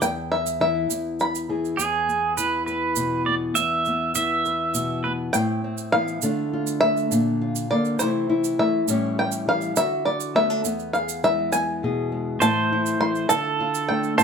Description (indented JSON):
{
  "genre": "acoustic folk duo or small band",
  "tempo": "68 BPM (dotted quarters)",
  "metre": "6/8",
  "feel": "straight",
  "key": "A minor from 5.3 s",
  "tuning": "A4 = 440 Hz",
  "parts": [
    { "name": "bluegrass banjo", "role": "melody", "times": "0.0-1.8, 5.3-14.2 s", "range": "C5 to C6", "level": "-23 LUFS", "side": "equal", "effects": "none" },
    { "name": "nylon-string guitar", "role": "accompaniment", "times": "0.0-14.2 s", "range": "E2 to B4", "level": "-25 LUFS", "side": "left 2 dB", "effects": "none" },
    { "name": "tube shaker", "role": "percussion", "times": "0.0-14.2 s", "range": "none", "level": "-30 LUFS", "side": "right 9 dB", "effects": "none" },
    { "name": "pedal steel guitar", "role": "second line", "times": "1.8-5.1, 12.4-14.2 s", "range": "G#4 to E5", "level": "-23 LUFS", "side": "right 4 dB", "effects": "none" }
  ],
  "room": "moderate studio reverb, RT60 0.9 s",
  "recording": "none",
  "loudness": "-20 LUFS",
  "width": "side -6 dB against mid",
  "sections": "0.0-1.8 A section; 1.8-5.3 B section; 5.3-14.2 C section",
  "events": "five-string banjo solo 0.0-1.8",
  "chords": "0.0 N.C.; 0.9 E; 1.8 E5; 5.3 Amadd9; 6.2 Dm; 7.1 Bb; 8.0 C6; 8.9 A7; 9.8 D; 10.6 E; 12.4 Am; 13.3 Dm",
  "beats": "| 0.01 0.90 | 1.79 2.68 | 3.56 4.45 | 5.34 6.22 | 7.11 7.99 | 8.88 9.76 | 10.65 11.53 | 12.41 13.30 | 14.18"
}